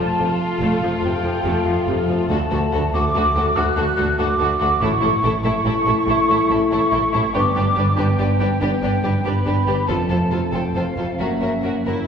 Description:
cinematic, heroic adventure film score; 95 BPM (dotted quarters); 12/8; straight; A4 = 440 Hz
warm symphonic violin section; melody; 0.0-11.9 s; A4 to C5; -29 LUFS; left 4 dB
large flute ensemble; second line; 0.0-11.9 s; E5 to F#6; -22 LUFS; right 1 dB
rich symphonic violin section; second line; 0.0-11.9 s; E4 to A4; -28 LUFS; left 2 dB
warm symphonic viola section; accompaniment; 0.0-12.1 s; C3 to F4; -28 LUFS; right 1 dB
dark French horn section; sustained chords; 0.0-12.1 s; A3 to F#4; -24 LUFS; left 3 dB
clear symphonic double bass section; bass; 0.0-11.9 s; F1 to D2; -25 LUFS; right 2 dB
rich symphonic cello section; bass; 0.0-11.9 s; D2 to A2; -25 LUFS; right 1 dB
timpani; percussion; 2.3-5.4 s; A2 to D3; -31 LUFS; equal
wet scoring stage reverb, RT60 1.8 s; heard from further back in the room; -17 LUFS; side -7 dB against mid
0.0-12.1 A section
0.0 F; 2.3 D; 4.8 A; 7.3 G; 9.9 F; 11.2 F#7
0.40 1.03 1.66 | 2.29 2.93 3.56 4.19 | 4.82 5.44 6.07 6.70 | 7.34 7.97 8.61 9.24 | 9.88 10.53 11.19 11.85

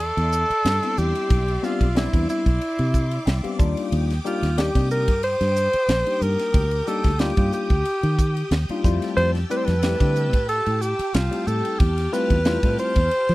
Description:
electric jazz fusion; 91 BPM; 4/4; swing 53% on 16ths; A4 = 437 Hz
mellow alto saxophone; melody; 0.0-13.3 s; E4 to C5; -23 LUFS; equal
tine electric piano; accompaniment; 0.0-13.2 s; G3 to G5; -28 LUFS; left 4 dB; phaser
string machine, violins; sustained chords; 0.0-13.3 s; G4 to F6; -34 LUFS; right 1 dB; ensemble chorus
fingered electric bass; bass; 0.0-13.3 s; Bb1 to F3; -23 LUFS; equal
tight funk drum kit; drums; 0.0-13.3 s; hi-hat, kick drum, ride cymbal, snare drum; -22 LUFS; equal
little or no reverb; dry, close 1970s-style studio recording; -19 LUFS; side -18 dB against mid
0.0-13.3 A section
tine electric piano fill 2.9-3.9
0.0 Cmaj9; 3.6 Ebmaj9; 8.8 Fmaj9
0.65 | 1.30 1.96 2.61 3.27 | 3.92 4.58 5.23 5.89 | 6.54 7.20 7.86 8.51 | 9.17 9.83 10.49 11.14 | 11.80 12.46 13.12

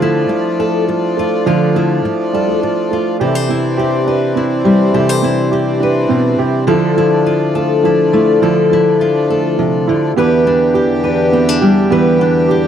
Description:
acoustic folk duo or small band; 103 BPM; 3/4; straight; C major; A4 = 439 Hz
fingerpicked steel-string acoustic guitar; accompaniment; 0.0-12.7 s; B2 to C5; -14 LUFS; left 3 dB
hand-pumped harmonium; sustained chords; 0.0-12.7 s; E2 to G4; -19 LUFS; left 3 dB
warm upright piano; arpeggios; 0.0-12.7 s; E3 to G4; -17 LUFS; right 9 dB
little or no reverb; dry, close 1970s-style studio recording; -11 LUFS; side -9 dB against mid
0.0-3.2 A section; 3.2-12.7 B section
0.0 Dmadd9; 3.2 Cadd9; 6.7 Dmadd9; 10.2 Em7
0.30 0.88 | 1.46 2.04 2.62 | 3.20 3.78 4.36 | 4.94 5.53 6.11 | 6.69 7.27 7.85 | 8.43 9.01 9.59 | 10.17 10.75 11.33 | 11.91 12.49

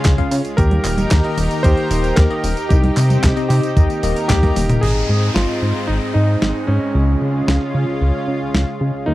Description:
italo disco; 113 BPM; 4/4; straight; Ab major; A4 = 439 Hz
warm electric grand piano; melody; 0.0-9.1 s; Db4 to C5; -23 LUFS; right 1 dB; tape echo
lush unison pad; sustained chords; 0.0-9.1 s; Eb3 to Bb4; -24 LUFS; equal; chorus
bell-like tine electric piano; stabs; 0.0-9.1 s; Ab2 to F5; -25 LUFS; left 3 dB; medium stereo tremolo, low-pass filter
chorused synth bass; bass; 0.0-9.1 s; Eb1 to Db3; -17 LUFS; equal
clean 12-bit digital drum machine; drums; 0.0-8.7 s; congas, crash cymbal, handclaps, hi-hat, snare drum, tambourine, toms; -21 LUFS; equal
electronic kick drum; drums; 0.0-4.5 s; -15 LUFS; equal
downlifter; sound effects; 4.8-9.1 s; -31 LUFS; equal
little or no reverb; dry, close 1970s-style studio recording; -14 LUFS; side -16 dB against mid
0.0-4.8 A section; 4.8-9.1 B section
band accent 4.3; drum fill 4.6
0.0 Db; 0.6 Eb; 2.7 Cm; 3.8 Eb; 4.8 Ab; 7.0 Db
0.05 | 0.58 1.11 1.64 2.17 | 2.70 3.23 3.77 4.30 | 4.83 5.36 5.89 6.42 | 6.95 7.48 8.01 8.54 | 9.08

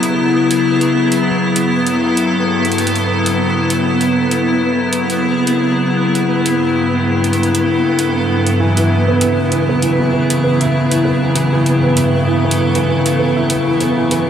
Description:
IDM; 98 BPM; 4/4; swing 56% on 16ths; A4 = 440 Hz
icy glass pad; sustained chords; 0.0-14.3 s; G2 to A4; -14 LUFS; left 1 dB; chorus, built-in reverb
electronic hi-hat; drums; 0.0-14.2 s; -24 LUFS; right 2 dB
flickering grainy texture; texture; 0.0-14.3 s; B3 to B4; -24 LUFS; equal; built-in reverb
felt-muted upright piano; arpeggios; 8.6-14.3 s; E3 to E4; -17 LUFS; right 3 dB; wide subtle chorus, analog delay
wet huge ambient reverb, RT60 7.9 s; dreamy mix soaked in reverb; -12 LUFS; side -9 dB against mid
0.0-14.3 A section
0.0 Eadd9; 1.3 Gmaj9; 3.7 Eadd9; 6.2 Gmaj9; 8.6 Eadd9; 11.1 Gmaj9; 13.5 Eadd9
0.03 0.64 | 1.25 1.87 2.48 3.09 | 3.70 4.32 4.93 5.54 | 6.15 6.76 7.38 7.99 | 8.60 9.21 9.82 10.44 | 11.05 11.66 12.27 12.89 | 13.50 14.11

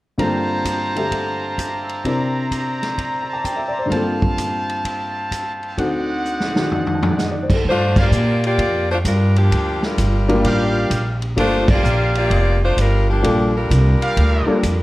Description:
jazz, big band swing; 129 BPM; 4/4; swing 67% on 8ths; G dorian, G minor from 7.6 s; A4 = 440 Hz
warm baby grand piano; accompaniment; 0.2-14.6 s; D2 to Bb5; -21 LUFS; left 1 dB
brilliant trumpet section; stabs; 0.2-14.6 s; G4 to E6; -24 LUFS; right 1 dB
swinging big-band drum kit; drums; 0.2-14.8 s; crash cymbal, hi-hat, kick drum, ride cymbal, snare drum, toms; -23 LUFS; equal
upright bass; bass; 7.6-14.8 s; F1 to Bb2; -17 LUFS; equal
edgy saxophone section; melody; 7.7-14.8 s; F3 to D5; -20 LUFS; left 1 dB
moderate recital hall reverb, RT60 1.3 s; worn, warbling old tape, cassette tape, warbly pitch drift; -16 LUFS; side -18 dB against mid
0.2-7.6 A section; 7.6-14.8 B section
drum fill 6.2-7.2; band accent 7.9, 11.6
0.2 Gm11; 2.1 C9; 3.9 Gm11; 5.8 D7b9; 7.6 Gm7
| 0.19 0.65 1.12 1.58 | 2.05 2.52 2.98 3.45 | 3.92 4.38 4.85 5.32 | 5.78 6.25 6.71 7.18 | 7.64 8.11 8.58 9.04 | 9.51 9.97 10.44 10.90 | 11.37 11.83 12.30 12.77 | 13.23 13.70 14.16 14.63

